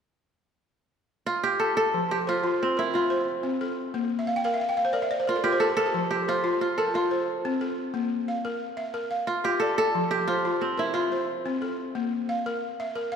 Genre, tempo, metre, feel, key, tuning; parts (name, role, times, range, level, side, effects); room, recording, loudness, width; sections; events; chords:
west african traditional; 120 BPM (dotted quarters); 12/8; straight; F major; A4 = 441 Hz
kora; melody; 1.3-12.5 s; C4 to A4; -26 LUFS; right 1 dB
balafon; arpeggios; 1.9-13.2 s; F3 to G5; -27 LUFS; left 1 dB
wet church reverb, RT60 3.1 s; recorded in a church or concert hall; -24 LUFS; side -7 dB against mid
0.0-1.9 A section; 1.9-13.2 B section
balafon fill 4.2-5.9
0.0 N.C.; 1.9 F; 3.9 Bb5; 5.9 F; 7.9 Bb; 10.0 F; 12.0 Bb5